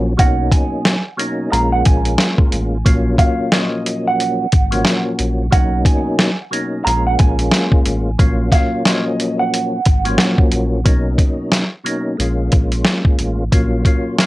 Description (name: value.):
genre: hip hop, boom-bap hip-hop.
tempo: 90 BPM.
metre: 4/4.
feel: swing 60% on 16ths.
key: unclear.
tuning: A4 = 440 Hz.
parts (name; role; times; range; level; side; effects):
mellow electric guitar; melody; 0.0-10.8 s; Eb5 to Bb5; -21 LUFS; right 3 dB; high-pass filter, low-pass filter, cassette tape, tape echo.
percussive tonewheel organ; accompaniment; 0.0-14.3 s; Bb2 to F4; -20 LUFS; left 1 dB; chorus vibrato, slow rotary speaker, high-pass filter, low-pass filter, cassette tape.
sub bass with octave; bass; 0.0-13.8 s; Ab1 to B1; -19 LUFS; equal; none.
boom bap sampler-style drum kit; drums; 0.2-14.3 s; hi-hat, kick drum, snare drum; -14 LUFS; equal; cassette tape.
room: little or no reverb.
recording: home recording on cassette.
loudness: -13 LUFS.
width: side -18 dB against mid.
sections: 0.0-10.9 A section; 10.9-14.3 B section.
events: none.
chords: 0.2 Bmaj9; 1.5 Bbm7; 2.9 Ab13sus4; 5.5 Bmaj9; 6.9 Bbm7; 8.2 Ab13sus4; 10.9 Bmaj9; 12.2 Bbm7; 13.5 Ab9sus4 (rootless).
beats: | 0.19 0.86 1.52 2.19 | 2.86 3.52 4.19 4.86 | 5.52 6.19 6.86 7.52 | 8.19 8.86 9.52 10.19 | 10.86 11.52 12.19 12.86 | 13.52 14.19.